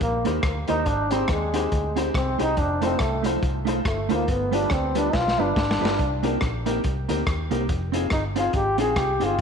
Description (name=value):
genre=ska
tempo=141 BPM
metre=4/4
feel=swing 58% on 8ths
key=unclear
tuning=A4 = 440 Hz
part: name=mellow trombone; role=melody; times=0.0-9.4 s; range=F3 to Ab4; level=-25 LUFS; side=equal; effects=tape echo
part: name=vintage muted fingered electric bass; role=bass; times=0.0-9.4 s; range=F1 to Eb2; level=-29 LUFS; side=equal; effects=none
part: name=crunchy breakbeat drum kit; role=drums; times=0.0-9.4 s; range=hi-hat, kick drum, rim click, snare drum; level=-28 LUFS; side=equal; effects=none
part: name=mellow electric guitar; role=accompaniment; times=0.2-9.4 s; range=G3 to Ab4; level=-29 LUFS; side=right 10 dB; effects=tape echo
part: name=warm upright piano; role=stabs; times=0.2-9.3 s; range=C4 to C5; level=-30 LUFS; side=left 9 dB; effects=none
room=moderate echo chamber reverb, RT60 1.5 s, studio reverb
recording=1960s-style stereo with parts hard left and right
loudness=-21 LUFS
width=side -6 dB against mid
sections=0.0-9.4 A section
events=trombone solo 0.0-9.4; drum fill 5.1-6.0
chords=0.0 Cm7; 0.9 Abmaj7; 2.6 F7; 4.3 G7; 6.0 Cm7; 7.7 Fm7